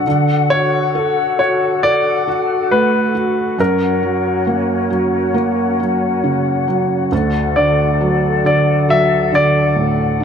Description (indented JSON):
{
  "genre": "pop",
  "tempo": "68 BPM",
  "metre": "4/4",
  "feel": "straight",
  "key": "D major",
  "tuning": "A4 = 440 Hz",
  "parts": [
    { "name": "felt-muted upright piano", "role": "accompaniment", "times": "0.0-10.2 s", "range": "D2 to A4", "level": "-17 LUFS", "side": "right 3 dB", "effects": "none" },
    { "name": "mellow flute section", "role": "sustained chords", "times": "0.0-10.2 s", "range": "C#4 to F#5", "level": "-19 LUFS", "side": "left 8 dB", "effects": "none" },
    { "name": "clear baby grand piano", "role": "melody", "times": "0.5-10.2 s", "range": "A#4 to E5", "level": "-17 LUFS", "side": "left 2 dB", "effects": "digital delay" }
  ],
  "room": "moderate scoring stage reverb, RT60 1.6 s, studio ambience",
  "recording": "dark, warm production",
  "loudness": "-13 LUFS",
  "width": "side -7 dB against mid",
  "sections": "0.0-10.2 A section",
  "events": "none",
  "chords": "0.1 D; 3.6 F#; 7.1 D",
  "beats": "| 0.06 0.94 1.83 2.71 | 3.59 4.47 5.36 6.24 | 7.12 8.00 8.88 9.77"
}